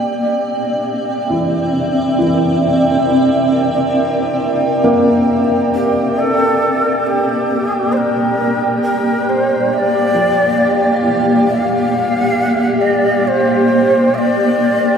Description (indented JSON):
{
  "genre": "ambient",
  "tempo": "68 BPM",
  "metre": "4/4",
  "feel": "straight",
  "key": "unclear",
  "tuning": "A4 = 445 Hz",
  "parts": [
    { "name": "granular cloud pad", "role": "sustained chords", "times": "0.0-15.0 s", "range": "Bb3 to G5", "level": "-14 LUFS", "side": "right 1 dB", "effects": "built-in reverb, shimmer reverb" },
    { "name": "felt-muted upright piano", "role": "arpeggios", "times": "1.3-15.0 s", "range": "E3 to F5", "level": "-21 LUFS", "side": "left 1 dB", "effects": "shimmer reverb, diffuse ambient delay" },
    { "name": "breathy mellow shakuhachi", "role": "melody", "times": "5.7-15.0 s", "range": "G4 to F5", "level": "-16 LUFS", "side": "equal", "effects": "shimmer reverb, diffuse ambient delay" }
  ],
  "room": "wet cathedral reverb, RT60 6.8 s",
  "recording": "in a vast, echoing space",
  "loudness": "-12 LUFS",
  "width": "side -7 dB against mid",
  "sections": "0.0-6.2 A section; 6.2-15.0 B section",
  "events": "none",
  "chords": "0.0 C9",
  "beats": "0.88 1.76 | 2.64 3.52 4.41 5.29 | 6.17 7.05 7.93 8.82 | 9.70 10.58 11.46 12.35 | 13.23 14.11"
}